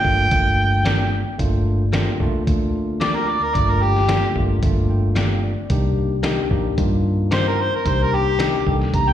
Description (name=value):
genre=straight-eighth soul blues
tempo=111 BPM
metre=4/4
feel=straight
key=G minor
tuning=A4 = 440 Hz
part: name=overdriven harmonica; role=melody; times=0.0-9.1 s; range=G4 to Bb5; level=-20 LUFS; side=equal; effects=slapback echo
part: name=bright tine electric piano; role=accompaniment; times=0.0-9.1 s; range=A3 to G5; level=-25 LUFS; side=equal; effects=auto-pan, slapback echo
part: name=vintage muted fingered electric bass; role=bass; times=0.0-9.1 s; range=F1 to G2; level=-21 LUFS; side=equal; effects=none
part: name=lo-fi sampler-style drum kit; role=drums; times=0.0-9.1 s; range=hi-hat, kick drum, snare drum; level=-23 LUFS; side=equal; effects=none
part: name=direct-recorded clean electric guitar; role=stabs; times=0.8-8.6 s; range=F3 to G4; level=-31 LUFS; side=left 8 dB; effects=slapback echo
room=little or no reverb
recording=live gig heard through the venue's PA, recital hall reverb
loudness=-17 LUFS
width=side -10 dB against mid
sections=0.0-9.1 A section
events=tine electric piano fill 4.6-5.7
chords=0.0 Gm7; 5.7 Cm7